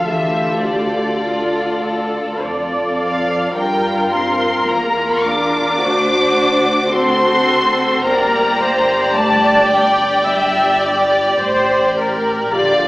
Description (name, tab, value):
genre	classical, slow romantic movement for string orchestra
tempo	53 BPM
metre	4/4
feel	rubato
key	unclear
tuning	A4 = 440 Hz
part	rich symphonic violin section	melody	0.0-12.9 s	D5 to D6	-18 LUFS	left 1 dB	none
part	warm chamber violin section	second line	0.0-12.9 s	F4 to D5	-18 LUFS	equal	none
part	warm symphonic viola section	accompaniment	0.0-12.9 s	F4 to E5	-19 LUFS	equal	none
part	dark symphonic double bass section	bass	0.0-12.9 s	G1 to G2	-27 LUFS	right 1 dB	none
part	warm symphonic cello section	bass	0.0-12.9 s	D3 to D4	-24 LUFS	right 1 dB	none
room	wet recital hall reverb, RT60 1.6 s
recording	recorded in a church or concert hall, small speaker sound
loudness	-13 LUFS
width	side -19 dB against mid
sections	0.0-12.9 A section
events	none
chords	0.0 Dm; 3.6 Gm7; 5.8 D7; 8.1 Gm